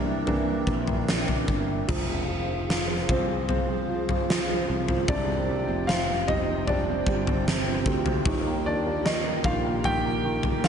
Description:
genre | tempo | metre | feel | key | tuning
pop ballad | 76 BPM | 4/4 | straight | unclear | A4 = 440 Hz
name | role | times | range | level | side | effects
clear upright piano | accompaniment | 0.0-10.7 s | C3 to D4 | -30 LUFS | right 4 dB | slapback echo
airy breathy pad | sustained chords | 0.0-10.7 s | C4 to G5 | -32 LUFS | left 1 dB | chorus
sustaining fretless electric bass | bass | 0.0-10.7 s | F1 to Eb2 | -31 LUFS | equal | ensemble chorus
huge arena drum kit | drums | 0.3-10.7 s | crash cymbal, kick drum, snare drum, toms | -27 LUFS | left 1 dB | none
clear grand piano | melody | 3.1-10.7 s | C4 to G5 | -30 LUFS | left 1 dB | slapback echo
room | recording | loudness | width
moderate lush hall reverb, RT60 2.4 s | big arena sound, nothing above 11.0 kHz | -23 LUFS | side -7 dB against mid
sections
0.0-1.9 A section; 1.9-10.7 B section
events
upright piano solo 0.0-1.9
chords
0.0 C7; 1.9 Fm; 5.1 Cmadd9; 8.3 Eb

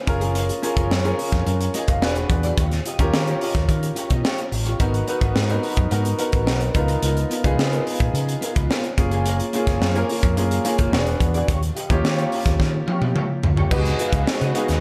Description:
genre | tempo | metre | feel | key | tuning
polished 1980s jazz-funk pop | 108 BPM | 4/4 | straight | unclear | A4 = 440 Hz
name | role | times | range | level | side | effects
clear grand piano | accompaniment | 0.0-14.8 s | A#3 to E#5 | -27 LUFS | equal | subtle chorus
electric guitar at the edge of break-up | riff | 0.1-14.7 s | A#3 to E#5 | -32 LUFS | equal | ensemble chorus
mellow fretless electric bass | bass | 0.1-14.8 s | E1 to D#3 | -25 LUFS | equal | none
crisp fusion drum kit | drums | 0.1-14.8 s | crash cymbal, hi-hat, kick drum, snare drum, toms | -25 LUFS | equal | gated reverb
rich studio string section | sustained chords | 13.7-14.8 s | C#3 to D#5 | -32 LUFS | equal | none
room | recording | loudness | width
light reverb, studio reverb | none | -21 LUFS | mono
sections
0.0-13.7 A section; 13.7-14.8 B section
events
drum fill 12.6-13.7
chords
0.1 F#maj9; 2.0 E9; 2.6 D#9; 4.8 G#m9; 6.8 C#13; 9.0 F#maj9; 10.9 E9; 11.5 D#9; 13.7 C#9sus4

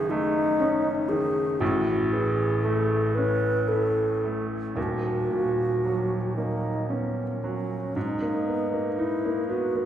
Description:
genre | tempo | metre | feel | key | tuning
classical, impressionist duo for alto flute and grand piano | 38 BPM (dotted quarters) | 6/8 | rubato | G# minor | A4 = 437 Hz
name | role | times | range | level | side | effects
mellow hollow alto flute | melody | 0.0-9.9 s | B3 to B4 | -26 LUFS | left 1 dB | none
clear baby grand piano | accompaniment | 0.0-9.9 s | D#1 to E4 | -26 LUFS | right 1 dB | none
room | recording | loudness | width
wet scoring stage reverb, RT60 1.7 s | heard from further back in the room | -23 LUFS | side -10 dB against mid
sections
0.0-8.0 A section; 8.0-9.9 B section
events
none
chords
0.0 F#m6; 1.6 A; 4.8 D#m7; 8.0 G#madd9

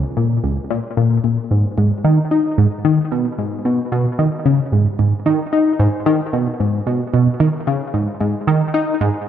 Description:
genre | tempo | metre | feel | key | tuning
ambient | 112 BPM | 4/4 | straight | unclear | A4 = 439 Hz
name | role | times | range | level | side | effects
tight sequenced synth | solo | 0.0-9.1 s | Db2 to Eb4 | -15 LUFS | equal | chorus, analog delay
room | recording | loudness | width
wet spring reverb, RT60 2.5 s | echo-heavy mix, lossy compression artefacts | -15 LUFS | side -10 dB against mid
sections
0.0-9.3 A section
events
none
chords
none

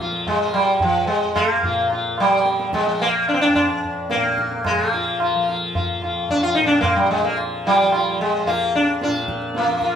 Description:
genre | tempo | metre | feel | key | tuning
indian classical, Hindustani | 110 BPM | 5/4 | straight | F raga bageshri | A4 = 437 Hz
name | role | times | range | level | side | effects
sitar | melody | 0.0-10.0 s | F3 to F4 | -18 LUFS | equal | none
tanpura | drone | 0.0-10.0 s | F2 to F3 | -30 LUFS | equal | none
tabla | percussion | 0.1-10.0 s | none | -28 LUFS | right 3 dB | none
room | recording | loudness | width
moderate studio reverb, RT60 0.8 s | band playing live in one room | -17 LUFS | side -8 dB against mid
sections
0.0-10.0 A section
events
none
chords
none

